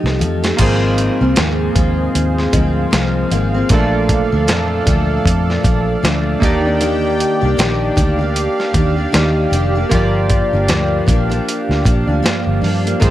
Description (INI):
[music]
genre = indie pop, bedroom pop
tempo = 77 BPM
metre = 4/4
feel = swing 60% on 16ths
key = unclear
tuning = A4 = 437 Hz
[part]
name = chorused retro synth keys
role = accompaniment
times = 0.0-13.1 s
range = G3 to D5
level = -23 LUFS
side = right 3 dB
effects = none
[part]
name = picked steel-string acoustic guitar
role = accompaniment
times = 0.0-13.1 s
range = G2 to G4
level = -18 LUFS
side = left 2 dB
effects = analog chorus, vibrato effect
[part]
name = fingered electric bass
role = bass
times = 0.0-13.1 s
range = F1 to G2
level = -18 LUFS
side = equal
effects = none
[part]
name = dusty soul sampler-style drum kit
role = drums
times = 0.1-13.1 s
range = crash cymbal, hi-hat, kick drum, snare drum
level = -18 LUFS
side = equal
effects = overdrive
[part]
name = warm analog pad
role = sustained chords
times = 0.6-13.1 s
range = G4 to G5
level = -22 LUFS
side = right 2 dB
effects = chorus
[sound]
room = light reverb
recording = none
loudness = -13 LUFS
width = side -13 dB against mid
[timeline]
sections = 0.6-13.1 A section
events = drum fill 0.0-0.6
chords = 0.0 F9; 0.6 Ab69; 3.7 Bbmaj7; 6.4 Ebmaj7; 9.9 Gm7